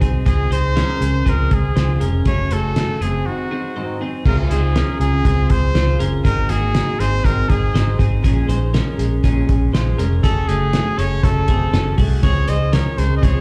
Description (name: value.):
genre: jangly indie pop.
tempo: 120 BPM.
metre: 4/4.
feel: straight.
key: Db major.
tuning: A4 = 436 Hz.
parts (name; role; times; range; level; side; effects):
fingerpicked steel-string acoustic guitar; accompaniment; 0.0-13.4 s; Gb2 to Ab4; -29 LUFS; equal; plate reverb, slapback echo.
twelve-string electric guitar; arpeggios; 0.0-13.4 s; A3 to C5; -28 LUFS; equal; subtle chorus, slapback echo, plate reverb.
vintage muted fingered electric bass; bass; 0.0-13.4 s; F1 to Db2; -20 LUFS; equal; none.
cloth-damped thuddy drum kit; drums; 0.0-13.3 s; crash cymbal, hi-hat, kick drum, snare drum; -21 LUFS; equal; none.
bright trumpet; melody; 0.3-13.4 s; Gb4 to Eb5; -26 LUFS; equal; slapback echo.
room: light reverb.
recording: live gig heard through the venue's PA, club reverb.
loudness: -18 LUFS.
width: mono.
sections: 0.0-4.3 A section; 4.3-13.4 B section.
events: break 3.3-4.3.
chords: 0.3 Dbmaj7; 2.3 Gbmadd9; 3.3 Ab7; 4.3 Dbmaj7; 6.2 Ab7; 8.2 Bbm7; 10.2 Gbmadd9; 12.2 Dbmaj7.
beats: | 0.27 0.76 1.26 1.76 | 2.26 2.76 3.26 3.75 | 4.25 4.75 5.25 5.75 | 6.25 6.75 7.25 7.75 | 8.24 8.74 9.24 9.74 | 10.24 10.74 11.24 11.74 | 12.23 12.73 13.23.